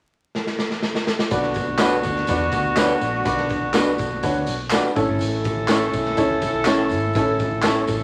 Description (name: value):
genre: uptempo 1960s-style soul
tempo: 123 BPM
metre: 4/4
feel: straight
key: unclear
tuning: A4 = 439 Hz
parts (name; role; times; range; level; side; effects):
- raw garage drum kit; drums; 0.3-8.0 s; hi-hat, kick drum, snare drum; -27 LUFS; equal; none
- warm horn section; second line; 1.3-8.0 s; B3 to A4; -26 LUFS; equal; none
- clear upright piano; accompaniment; 1.3-7.9 s; C#4 to D5; -26 LUFS; equal; none
- vintage muted fingered electric bass; bass; 1.3-8.0 s; G#1 to E2; -32 LUFS; equal; none
- tambourine and handclaps; percussion; 1.3-8.0 s; none; -32 LUFS; equal; none
- electric guitar through a small old amp; stabs; 1.8-7.8 s; D4 to C#5; -25 LUFS; equal; none
room: moderate studio ambience, RT60 0.5 s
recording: vinyl crackle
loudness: -21 LUFS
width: mono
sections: 0.0-1.3 A section; 1.3-8.0 B section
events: drum fill 0.3-1.3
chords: 0.0 N.C.; 1.3 Bm; 5.0 A